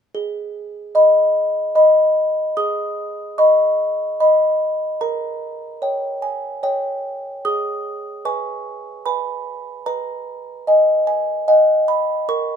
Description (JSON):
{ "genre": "classical, lullaby for music box", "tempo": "74 BPM", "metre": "3/4", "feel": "straight", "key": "G# minor", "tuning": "A4 = 440 Hz", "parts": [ { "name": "music box", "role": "solo", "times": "0.1-12.6 s", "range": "G#4 to D#6", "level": "-17 LUFS", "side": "equal", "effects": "none" } ], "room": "little or no reverb", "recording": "minimal, uncompressed stereo recording", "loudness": "-16 LUFS", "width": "side -7 dB against mid", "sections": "0.1-2.6 A section; 2.6-12.6 B section", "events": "none", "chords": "0.1 G#m; 5.0 A#m6; 7.4 G#m; 9.9 G#m/B" }